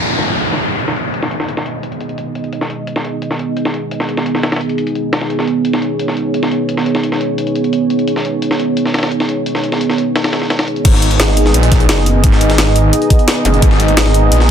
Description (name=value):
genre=dark technical drum and bass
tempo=173 BPM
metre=4/4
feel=straight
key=G# minor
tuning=A4 = 440 Hz
part: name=dark analog pad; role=sustained chords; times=0.3-14.5 s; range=B3 to D#5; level=-16 LUFS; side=right 2 dB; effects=chorus, sidechain pumping
part: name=downlifter and zap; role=sound effects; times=0.0-2.5, 13.4-13.5 s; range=none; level=-19 LUFS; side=left 1 dB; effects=none
part: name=breakbeat sampler-style drum kit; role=drums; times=0.1-14.5 s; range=hi-hat, snare drum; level=-20 LUFS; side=left 1 dB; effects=high-pass filter on snare, low-pass filter on snare, high-pass filter on hats, low-pass filter on hats
part: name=phased detuned saw bass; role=bass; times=10.8-14.5 s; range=F#1 to A#1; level=-12 LUFS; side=equal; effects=phaser
part: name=drum and bass drum kit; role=drums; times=10.8-14.4 s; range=crash cymbal, hi-hat, snare drum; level=-17 LUFS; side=left 1 dB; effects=overdrive, low-pass filter on hats, low-pass filter on snare, low-pass filter on cymbals
part: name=electronic kick drum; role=drums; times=10.8-13.7 s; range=none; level=-11 LUFS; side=equal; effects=overdrive
room=light reverb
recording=dense, heavily limited modern master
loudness=-12 LUFS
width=side -8 dB against mid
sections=0.0-10.8 A section; 10.8-14.5 B section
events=filter sweep on analog synth pad 0.0-10.8; drop 10.8-14.5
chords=0.0 G#m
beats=0.10 0.45 0.79 | 1.14 1.49 1.83 2.18 | 2.53 2.87 3.22 3.57 | 3.91 4.26 4.61 4.95 | 5.30 5.65 5.99 6.34 | 6.69 7.04 7.38 7.73 | 8.07 8.42 8.77 9.12 | 9.46 9.81 10.16 10.50 | 10.85 11.20 11.54 11.89 | 12.24 12.58 12.93 13.28 | 13.62 13.97 14.32